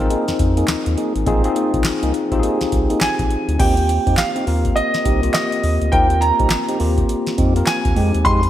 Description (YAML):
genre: R&B, new jack swing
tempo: 103 BPM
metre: 4/4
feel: swing 62% on 16ths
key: Eb major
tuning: A4 = 440 Hz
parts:
  - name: tine electric piano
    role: accompaniment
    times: 0.0-8.5 s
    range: Ab3 to Bb4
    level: -21 LUFS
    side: left 2 dB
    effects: medium stereo tremolo
  - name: round analog bass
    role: bass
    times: 0.0-8.5 s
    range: Ab1 to F2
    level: -20 LUFS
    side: equal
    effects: none
  - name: tonewheel organ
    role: stabs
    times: 0.1-8.4 s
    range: Ab3 to Ab4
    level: -26 LUFS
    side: right 2 dB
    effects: stopped rotary speaker
  - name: booming analog drum machine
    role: drums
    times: 0.1-8.5 s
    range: crash cymbal, handclaps, hi-hat, kick drum, snare drum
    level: -21 LUFS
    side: equal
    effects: none
  - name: warm grand piano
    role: melody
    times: 3.0-8.5 s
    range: Eb5 to C6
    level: -20 LUFS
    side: right 2 dB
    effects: lush chorus
room: moderate lush hall reverb, RT60 2.2 s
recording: bright 1980s-style digital production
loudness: -15 LUFS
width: side -12 dB against mid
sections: 0.0-3.6 A section; 3.6-8.5 B section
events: none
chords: 0.0 Bb7sus4; 3.6 Eb6; 8.0 Fm9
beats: 0.10 0.69 | 1.27 1.85 2.43 3.02 | 3.60 4.18 4.76 5.34 | 5.93 6.51 7.09 7.67 | 8.26